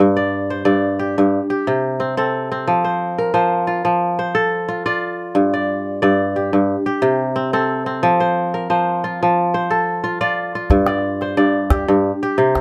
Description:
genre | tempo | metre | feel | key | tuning
west african traditional, West African string and xylophone music | 90 BPM | 4/4 | straight | G minor | A4 = 441 Hz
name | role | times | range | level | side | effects
kora | arpeggios | 0.0-12.6 s | G2 to D5 | -18 LUFS | equal | none
calabash | percussion | 10.7-12.6 s | none | -20 LUFS | equal | none
room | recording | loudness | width
little or no reverb | close, detailed microphones | -18 LUFS | mono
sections
0.0-10.7 A section; 10.7-12.6 A section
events
none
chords
0.0 G5; 1.3 C5; 2.7 F; 5.3 G5; 6.7 C5; 8.0 F; 10.7 G5; 12.0 C5

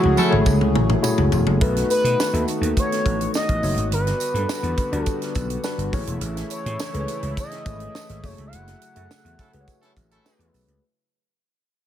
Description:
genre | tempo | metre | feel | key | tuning
polished 1980s jazz-funk pop | 104 BPM | 4/4 | straight | F# dorian | A4 = 440 Hz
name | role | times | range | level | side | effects
expressive portamento lead | melody | 0.0-10.3 s | F#4 to F#5 | -26 LUFS | equal | chorus
tine electric piano | accompaniment | 0.0-10.8 s | G3 to E5 | -26 LUFS | left 2 dB | analog chorus
chorused pulse-width pad | sustained chords | 0.0-10.8 s | C#3 to G#4 | -33 LUFS | right 1 dB | none
vintage slap bass | bass | 0.0-10.8 s | E1 to B2 | -23 LUFS | equal | none
tight funk drum kit | drums | 0.0-10.8 s | hi-hat, kick drum, snare drum, toms | -25 LUFS | equal | none
clear horn section | second line | 0.2-0.4, 9.4-10.5 s | A3 to A4 | -25 LUFS | equal | none
tambourine | percussion | 0.2-10.7 s | none | -36 LUFS | right 10 dB | none
room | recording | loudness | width
light reverb, studio reverb | none | -19 LUFS | side -10 dB against mid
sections
0.0-1.6 A section; 1.6-10.8 B section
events
drum fill 0.0-1.6; band accent 0.0-1.6, 8.5-10.8; fade-out 1.6-10.8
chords
0.0 F#m9; 1.6 B7; 3.9 Gmaj7; 5.9 Amaj7; 8.2 F#m9

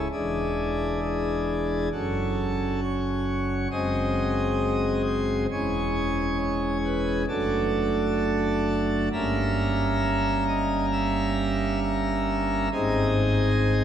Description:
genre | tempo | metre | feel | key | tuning
classical, chorale-style piece for pipe organ | 67 BPM | 4/4 | rubato | unclear | A4 = 441 Hz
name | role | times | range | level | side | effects
pipe organ, plenum | solo | 0.0-13.8 s | E1 to E5 | -23 LUFS | equal | none
room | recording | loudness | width
wet cathedral reverb, RT60 4.7 s | none | -23 LUFS | side -9 dB against mid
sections
0.0-13.8 A section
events
none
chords
0.1 E7; 1.9 F#m; 3.7 G#7/F#; 5.5 C#m/E; 7.3 D/F#; 9.1 Gdim7; 12.7 G#

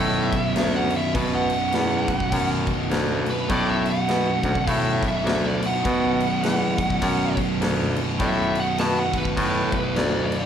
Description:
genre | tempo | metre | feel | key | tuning
stoner and doom metal | 102 BPM | 4/4 | swing 59% on 8ths | B minor | A4 = 440 Hz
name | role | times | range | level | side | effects
fuzz lead guitar | melody | 0.0-10.5 s | B4 to A5 | -27 LUFS | right 1 dB | distortion, analog delay
raw garage guitar | riff | 0.0-10.5 s | B1 to B2 | -30 LUFS | left 1 dB | overdrive
thick fuzz guitar | riff | 0.0-10.5 s | B1 to B2 | -30 LUFS | left 7 dB | distortion, slapback echo
thick fuzz guitar | riff | 0.0-10.5 s | B1 to B2 | -27 LUFS | right 7 dB | distortion
clear baritone saxophone | bass | 0.0-10.3 s | D2 to B2 | -25 LUFS | left 1 dB | overdrive
big rock drum kit | drums | 0.3-10.4 s | crash cymbal, kick drum, snare drum | -28 LUFS | left 1 dB | none
room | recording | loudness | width
light reverb | live gig heard through the venue's PA, club reverb | -20 LUFS | side -8 dB against mid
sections
0.0-10.5 A section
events
lead electric guitar solo 0.0-10.5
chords
0.0 Bm

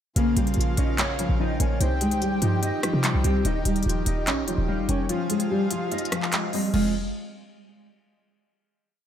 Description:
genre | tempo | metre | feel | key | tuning
hip hop, drill | 146 BPM | 4/4 | half-time | F minor | A4 = 440 Hz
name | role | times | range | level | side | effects
nylon-string guitar | melody | 0.2-6.9 s | F3 to Eb5 | -26 LUFS | equal | ensemble chorus, low-pass filter, analog delay
clear concert grand piano | accompaniment | 0.2-6.9 s | Db3 to F5 | -32 LUFS | left 3 dB | low-pass filter
accordion | sustained chords | 0.2-6.9 s | C3 to G4 | -35 LUFS | equal | none
short 808-style bass | bass | 0.2-7.1 s | Eb1 to C3 | -25 LUFS | equal | none
drill drum kit | drums | 0.2-6.8 s | crash cymbal, handclaps, hi-hat, rim click | -28 LUFS | equal | none
warm velvety synth lead | second line | 0.4-6.9 s | Eb5 to Ab5 | -36 LUFS | left 2 dB | chorus, analog delay
room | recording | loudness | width
moderate plate reverb, RT60 1.6 s | dreamy mix soaked in reverb | -22 LUFS | side -9 dB against mid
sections
0.2-6.7 hook; 6.7-8.4 final chord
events
kick muted 5.1-6.7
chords
0.2 Bbm; 1.8 Cm; 3.4 Eb; 5.1 Fm

